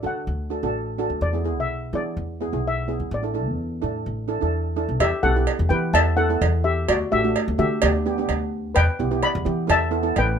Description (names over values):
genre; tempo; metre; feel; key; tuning
calypso; 128 BPM; 4/4; straight; unclear; A4 = 441 Hz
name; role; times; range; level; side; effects
steel pan; melody; 0.0-10.4 s; F#4 to B5; -23 LUFS; left 4 dB; none
steel pan; accompaniment; 0.0-10.4 s; A3 to A4; -26 LUFS; right 4 dB; none
upright bass; bass; 0.0-10.4 s; A1 to E3; -24 LUFS; left 1 dB; none
cowbell; percussion; 5.0-10.3 s; none; -24 LUFS; right 9 dB; none
room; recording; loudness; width
light reverb; minimal, uncompressed stereo recording; -20 LUFS; side -7 dB against mid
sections
0.0-5.0 A section; 5.0-10.4 B section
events
none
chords
0.0 D; 1.2 E; 3.1 Asus4; 5.0 Em; 5.9 Asus2/E; 6.9 D; 7.8 G/D; 8.8 Em7; 9.7 Asus2/E